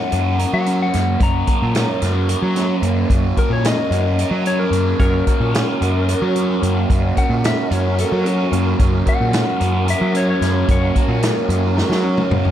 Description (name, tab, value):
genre	psychedelic rock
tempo	221 BPM (eighths)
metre	7/8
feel	straight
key	F# major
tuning	A4 = 440 Hz
part	electric slide guitar	melody	0.0-11.0 s	F#4 to A#5	-24 LUFS	left 4 dB	analog delay
part	fuzz guitar	riff	0.0-12.5 s	F#3 to A#4	-22 LUFS	right 3 dB	distortion, phaser
part	fuzz picked electric bass	bass	0.1-12.5 s	F#2 to F#3	-19 LUFS	equal	overdrive
part	vintage drum kit	drums	0.1-12.5 s	hi-hat, kick drum, snare drum, toms	-20 LUFS	equal	none
part	percussive tonewheel organ	sustained chords	5.0-12.5 s	C#4 to A#4	-26 LUFS	right 1 dB	slow rotary speaker, chorus vibrato
room	light reverb, studio reverb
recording	none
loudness	-15 LUFS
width	side -11 dB against mid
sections	0.0-12.5 A section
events	electric slide guitar solo 0.0-12.5; drum fill 11.8-12.5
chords	0.0 F#